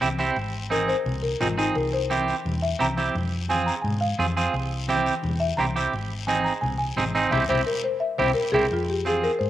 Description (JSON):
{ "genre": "latin, cumbia", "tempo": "172 BPM", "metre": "4/4", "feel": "straight", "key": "F minor", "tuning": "A4 = 440 Hz", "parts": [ { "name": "clean electric guitar", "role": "accompaniment", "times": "0.0-9.3 s", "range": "C4 to Ab4", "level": "-25 LUFS", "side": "right 4 dB", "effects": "spring reverb, slapback echo" }, { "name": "hollow-body short-scale fingered electric bass", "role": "bass", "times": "0.0-9.5 s", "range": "Ab1 to Ab2", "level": "-29 LUFS", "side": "equal", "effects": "none" }, { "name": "congas", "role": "percussion", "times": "0.0-9.2 s", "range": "none", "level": "-34 LUFS", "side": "left 3 dB", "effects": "none" }, { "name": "guiro", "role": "percussion", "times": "0.0-9.5 s", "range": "none", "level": "-38 LUFS", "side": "left 7 dB", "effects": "none" }, { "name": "buzzing marimba with medium mallets", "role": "melody", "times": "0.7-9.5 s", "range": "Eb4 to Bb5", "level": "-25 LUFS", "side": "left 2 dB", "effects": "none" } ], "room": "little or no reverb", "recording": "recorded outdoors, with no room sound", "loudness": "-22 LUFS", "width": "side -12 dB against mid", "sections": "0.0-8.7 A section", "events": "marimba solo 0.0-8.7; band accent 7.3-8.7; drum fill 8.2-8.7", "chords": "0.4 Ab; 1.8 C7; 3.1 Fm; 4.5 C7; 5.9 Ab; 7.3 C; 8.7 Fm" }